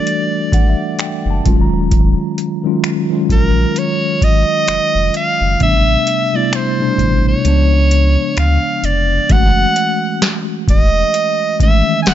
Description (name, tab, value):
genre	contemporary R&B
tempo	65 BPM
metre	4/4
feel	swing 58% on 16ths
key	unclear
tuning	A4 = 440 Hz
part	edgy soprano saxophone	melody	0.0-12.1 s	A#4 to G#5	-17 LUFS	right 1 dB	none
part	mellow tine electric piano	accompaniment	0.0-12.1 s	B2 to A#5	-18 LUFS	equal	medium stereo tremolo
part	booming analog drum machine	drums	0.1-12.1 s	finger snaps, hi-hat, kick drum, snare drum	-14 LUFS	equal	none
part	saturated sub bass	bass	1.3-12.1 s	D#1 to D2	-16 LUFS	equal	none
room	little or no reverb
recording	nothing above 7.6 kHz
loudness	-12 LUFS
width	side -11 dB against mid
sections	0.0-9.3 A section; 9.3-12.1 B section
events	tine electric piano fill 0.1-1.9; kick muted 7.5-9.3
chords	0.0 Em11; 1.4 D#m11; 5.6 Am11; 7.5 C#7b9; 9.3 F#m9